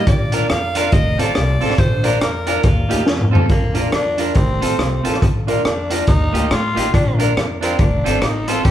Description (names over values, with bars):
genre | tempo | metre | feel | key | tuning
ska | 140 BPM | 4/4 | swing 60% on 8ths | Bb major | A4 = 436 Hz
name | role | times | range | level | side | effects
bright alto saxophone | melody | 0.0-3.3 s | F4 to F5 | -23 LUFS | right 1 dB | none
clean electric guitar | accompaniment | 0.0-8.6 s | Bb3 to Bb4 | -23 LUFS | right 5 dB | none
upright bass | bass | 0.0-8.7 s | F1 to A2 | -22 LUFS | left 1 dB | none
crunchy breakbeat drum kit | drums | 0.1-8.7 s | hi-hat, kick drum, rim click, snare drum, toms | -17 LUFS | equal | dub echo
warm upright piano | stabs | 0.3-8.6 s | C4 to Bb4 | -24 LUFS | left 2 dB | none
growling tenor saxophone | melody | 3.5-8.7 s | Bb3 to G4 | -23 LUFS | left 1 dB | none
room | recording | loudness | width
wet large studio reverb, RT60 1.2 s | band playing live in one room | -14 LUFS | side -11 dB against mid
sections
0.0-3.5 A section; 3.5-8.7 A section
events
alto saxophone solo 0.0-3.5; drum fill 3.1-3.5; tenor saxophone solo 3.5-8.7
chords
0.1 Bb; 0.9 F; 1.8 Bb; 2.6 Ebadd9; 3.1 F; 3.5 Bb; 4.4 F; 5.2 Bb; 6.1 Ebadd9; 6.9 Bb; 7.8 F